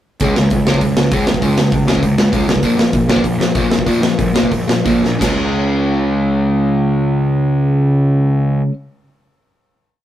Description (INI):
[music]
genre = punk rock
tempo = 168-198 BPM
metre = 4/4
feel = straight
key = Db major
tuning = A4 = 442 Hz
[part]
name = crunchy overdriven guitar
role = riff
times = 0.2-8.7 s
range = Bb2 to Db4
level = -15 LUFS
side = equal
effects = none
[part]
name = fuzz picked electric bass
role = bass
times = 0.2-8.6 s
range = Bb1 to Db2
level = -20 LUFS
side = equal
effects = overdrive
[part]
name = big rock drum kit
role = drums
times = 0.2-5.3 s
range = crash cymbal, hi-hat, kick drum, snare drum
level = -17 LUFS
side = equal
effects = none
[sound]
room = light reverb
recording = rough rehearsal-room recording, tube saturation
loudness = -12 LUFS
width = side -12 dB against mid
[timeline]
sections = 0.2-5.2 verse; 5.2-8.1 final chord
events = slowing down 2.6-5.2; drum fill 5.0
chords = 0.2 Db5; 2.6 Bb5; 5.2 Db5